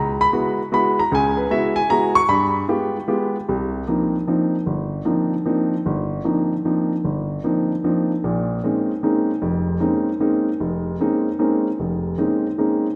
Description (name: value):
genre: jazz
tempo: 152 BPM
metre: 3/4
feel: swing 65% on 8ths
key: C phrygian from 3.5 s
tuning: A4 = 440 Hz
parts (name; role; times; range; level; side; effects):
- warm grand piano; solo; 0.0-12.9 s; F1 to C#6; -21 LUFS; equal; none
room: wet concert hall reverb, RT60 1.9 s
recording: recorded in a church or concert hall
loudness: -21 LUFS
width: mono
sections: 0.0-3.5 A section; 3.5-13.0 B section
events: none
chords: 0.0 F#9sus4; 2.3 G7b9; 3.5 Cm11; 8.2 Bbm11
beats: 0.32 0.71 | 1.11 1.50 1.90 | 2.29 2.69 3.08 | 3.48 3.88 4.27 | 4.67 5.06 5.46 | 5.85 6.25 6.65 | 7.04 7.44 7.83 | 8.23 8.63 9.02 | 9.42 9.82 10.21 | 10.61 11.01 11.40 | 11.80 12.19 12.59